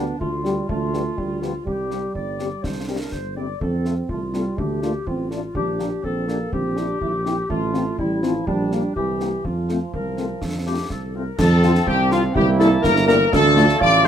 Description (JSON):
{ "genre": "military-style march for wind band", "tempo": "123 BPM", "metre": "2/4", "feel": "straight", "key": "F major", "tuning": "A4 = 437 Hz", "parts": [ { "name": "mellow trumpet section", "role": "melody", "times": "0.0-14.0 s", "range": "F4 to A5", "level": "-24 LUFS", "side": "left 2 dB", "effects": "none" }, { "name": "mellow woodwind section", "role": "second line", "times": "0.0-14.1 s", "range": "D4 to D5", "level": "-25 LUFS", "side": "left 2 dB", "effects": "none" }, { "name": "warm euphonium", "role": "second line", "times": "0.0-14.1 s", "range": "E3 to G4", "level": "-26 LUFS", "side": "right 5 dB", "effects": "none" }, { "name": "mellow French horn section", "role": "accompaniment", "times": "0.0-14.1 s", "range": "F3 to G4", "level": "-23 LUFS", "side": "left 4 dB", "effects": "none" }, { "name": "mellow tuba", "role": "bass", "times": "0.0-14.1 s", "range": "G1 to F2", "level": "-23 LUFS", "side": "right 2 dB", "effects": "none" }, { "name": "concert bass drum, concert snare drum and clash cymbals", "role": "drums", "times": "0.2-14.1 s", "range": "none", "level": "-29 LUFS", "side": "left 1 dB", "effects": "none" }, { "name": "piccolo", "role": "second line", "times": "11.4-14.1 s", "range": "F5 to D6", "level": "-26 LUFS", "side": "left 2 dB", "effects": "none" }, { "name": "mellow trombone section", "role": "sustained chords", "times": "11.4-14.1 s", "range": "E3 to C4", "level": "-26 LUFS", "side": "equal", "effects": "none" } ], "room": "light reverb", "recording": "none", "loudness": "-19 LUFS", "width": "side -9 dB against mid", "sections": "0.0-11.4 A section; 11.4-14.1 A section", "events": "none", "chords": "0.0 G7/D; 1.7 C5; 3.6 F; 4.6 Dm; 5.6 Gm/Bb; 6.5 C7/Bb; 7.5 F/A; 8.5 Gm/Bb; 9.0 C7; 9.4 F; 12.4 C7; 13.3 Dm" }